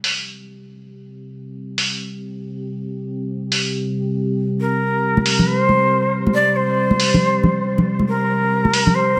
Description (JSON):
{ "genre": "deep dubstep", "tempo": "138 BPM", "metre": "4/4", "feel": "swing 61% on 16ths, half-time", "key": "unclear", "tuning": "A4 = 440 Hz", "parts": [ { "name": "deep dark ambient pad", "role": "sustained chords", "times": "0.5-9.2 s", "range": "C4 to G4", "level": "-25 LUFS", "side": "equal", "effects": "chorus, built-in reverb" }, { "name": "electronic hi-hat", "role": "drums", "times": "0.0-8.8 s", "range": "none", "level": "-22 LUFS", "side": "equal", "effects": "low-pass filter on snare, low-pass filter on hats, low-pass filter on room" }, { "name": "shakuhachi", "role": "melody", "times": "4.6-9.2 s", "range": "Bb4 to D5", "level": "-20 LUFS", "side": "equal", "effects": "dub echo" }, { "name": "congas", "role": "percussion", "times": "5.2-9.2 s", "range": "none", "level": "-22 LUFS", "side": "equal", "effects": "none" } ], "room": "moderate huge ambient reverb, RT60 6.2 s", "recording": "none", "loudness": "-19 LUFS", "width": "mono", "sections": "0.0-9.2 A section", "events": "filter sweep on ambient pad 0.0-9.2", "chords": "0.0 C5", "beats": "0.26 0.69 | 1.13 1.56 2.00 2.43 | 2.87 3.30 3.73 4.17 | 4.61 5.04 5.47 5.91 | 6.34 6.78 7.21 7.65 | 8.08 8.52 8.95" }